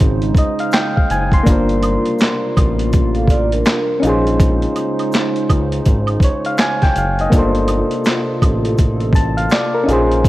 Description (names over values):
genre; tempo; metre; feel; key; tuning
lo-fi hip hop; 82 BPM; 4/4; swing 61% on 16ths; G minor; A4 = 441 Hz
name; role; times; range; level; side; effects
soft electric-piano-like synth keys; accompaniment; 0.0-10.3 s; Bb3 to C6; -18 LUFS; left 1 dB; chorus, low-pass filter
warbly tape-like pad; sustained chords; 0.0-10.3 s; C3 to C5; -24 LUFS; right 2 dB; chorus, built-in reverb, low-pass filter
smooth gliding synth bass; bass; 0.0-10.3 s; F#1 to Db2; -19 LUFS; equal; transformer saturation
boom bap sampler-style drum kit; drums; 0.0-10.3 s; handclaps, hi-hat, kick drum, snare drum; -15 LUFS; equal; none
egg shaker and woodblock; percussion; 0.4-10.3 s; none; -29 LUFS; right 4 dB; none
vibraphone with soft mallets; second line; 3.2-4.0 s; D4 to F5; -21 LUFS; right 2 dB; low-pass filter, tape echo
room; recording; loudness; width
light reverb; worn, warbling old tape, cassette tape, warbly pitch drift; -13 LUFS; side -16 dB against mid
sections
0.0-10.3 A section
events
none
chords
0.0 Bbm11 (rootless); 1.5 Gm11; 4.0 Bbm11; 7.3 Gm11